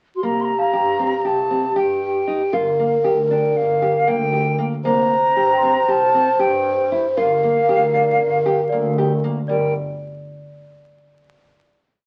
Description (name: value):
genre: contemporary instrumental, chamber music in an uneven meter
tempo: 233 BPM (eighths)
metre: 9/8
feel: straight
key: G minor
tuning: A4 = 440 Hz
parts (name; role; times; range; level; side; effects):
- wooden flute; melody; 0.2-9.7 s; F5 to C6; -23 LUFS; equal; none
- breathy mellow bass ocarina; second line; 0.2-9.7 s; F#4 to C5; -22 LUFS; equal; none
- nylon-string guitar; arpeggios; 0.2-9.7 s; G3 to G4; -27 LUFS; equal; none
- muted double bass; bass; 0.2-9.7 s; G1 to G2; -30 LUFS; equal; none
- celesta; texture; 0.6-11.8 s; D5 to C6; -30 LUFS; equal; none
room: moderate studio reverb, RT60 0.7 s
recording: very old 78 rpm record, vinyl crackle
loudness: -18 LUFS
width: mono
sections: 0.0-0.2 pickup bar; 0.2-9.5 climax; 9.5-11.8 final chord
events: none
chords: 0.2 C7(no3); 2.5 Gm7; 4.9 C7(no3); 7.2 Gm7; 9.5 G5